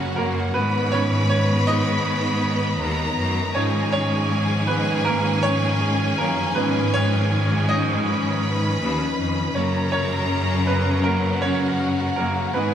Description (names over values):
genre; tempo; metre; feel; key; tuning
pop ballad; 80 BPM; 4/4; straight; F# major; A4 = 440 Hz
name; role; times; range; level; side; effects
warm symphonic violin section; second line; 0.0-12.7 s; F#4 to B5; -27 LUFS; left 1 dB; diffuse ambient delay
warm grand piano; accompaniment; 0.0-12.7 s; E#3 to D#5; -24 LUFS; right 3 dB; lush chorus
warm studio string section; sustained chords; 0.0-12.7 s; C#3 to C#4; -26 LUFS; left 2 dB; none
rich symphonic cello section; bass; 0.0-12.7 s; D#2 to G#2; -23 LUFS; equal; none
room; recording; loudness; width
moderate huge ambient reverb, RT60 7.7 s; dreamy mix soaked in reverb; -19 LUFS; side -9 dB against mid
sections
0.0-12.7 A section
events
grand piano solo 0.0-12.7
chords
0.0 F#; 0.6 G#m; 3.6 C#add9; 9.6 F#